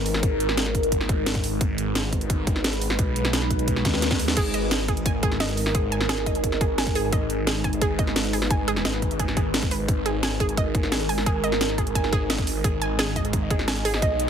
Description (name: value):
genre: dark technical drum and bass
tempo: 174 BPM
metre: 4/4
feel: straight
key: G# minor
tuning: A4 = 439 Hz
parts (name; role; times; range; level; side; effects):
- deep dark ambient pad; sustained chords; 0.0-14.3 s; G#3 to D#5; -28 LUFS; right 1 dB; chorus, built-in reverb, sidechain pumping
- phased detuned saw bass; bass; 0.0-14.3 s; G#1 to D#2; -28 LUFS; equal; phaser, overdrive, sidechain pumping
- drum and bass drum kit; drums; 0.1-14.3 s; crash cymbal, hi-hat, snare drum; -26 LUFS; equal; overdrive
- electronic kick drum; drums; 0.2-14.1 s; none; -25 LUFS; equal; overdrive
- wide unison pluck; arpeggios; 4.4-14.2 s; G#4 to G#5; -30 LUFS; right 2 dB; sidechain pumping, dub echo
room: digital ambience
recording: heavily compressed radio sound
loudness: -21 LUFS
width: side -8 dB against mid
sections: 0.0-14.3 A section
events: drum fill 3.9-4.4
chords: 0.0 G#madd9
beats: | 0.23 0.57 0.92 1.26 | 1.61 1.95 2.30 2.64 | 2.99 3.33 3.68 4.02 | 4.37 4.71 5.06 5.40 | 5.75 6.09 6.44 6.78 | 7.13 7.47 7.82 8.16 | 8.51 8.85 9.20 9.54 | 9.88 10.23 10.57 10.92 | 11.26 11.61 11.95 12.30 | 12.64 12.99 13.33 13.68 | 14.02